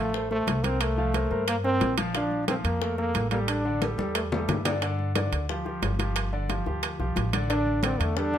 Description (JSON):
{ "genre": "latin, salsa", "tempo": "179 BPM", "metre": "4/4", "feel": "straight", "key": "unclear", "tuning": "A4 = 440 Hz", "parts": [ { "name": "bright trombone", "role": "melody", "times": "0.0-4.6, 7.5-8.4 s", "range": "A3 to D4", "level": "-28 LUFS", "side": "equal", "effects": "none" }, { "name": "clear concert grand piano", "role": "accompaniment", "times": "0.0-8.4 s", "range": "D3 to F5", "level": "-31 LUFS", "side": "equal", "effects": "none" }, { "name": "upright bass", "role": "bass", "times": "0.0-8.4 s", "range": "G1 to G2", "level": "-30 LUFS", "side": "equal", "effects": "none" }, { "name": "bongos", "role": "percussion", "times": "0.1-8.4 s", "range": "none", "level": "-36 LUFS", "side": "left 7 dB", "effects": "none" }, { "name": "congas", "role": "percussion", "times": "0.1-8.4 s", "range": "none", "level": "-33 LUFS", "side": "left 2 dB", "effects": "none" }, { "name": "timbales", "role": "percussion", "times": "0.5-8.2 s", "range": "none", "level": "-32 LUFS", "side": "right 9 dB", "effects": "none" } ], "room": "light reverb", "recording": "close, detailed microphones", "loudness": "-24 LUFS", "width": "side -10 dB against mid", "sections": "0.0-8.4 A section", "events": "drum fill 3.8-4.8", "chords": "0.0 Dm7 (rootless); 0.8 C7sus4; 2.1 Bbmaj7; 3.5 A7sus4; 4.8 G5; 6.2 G7(no3); 7.5 A7sus4", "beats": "0.14 0.47 | 0.81 1.14 1.48 1.81 | 2.15 2.48 2.81 3.15 | 3.48 3.82 4.15 4.49 | 4.82 5.16 5.49 5.83 | 6.16 6.50 6.83 7.17 | 7.50 7.83 8.17" }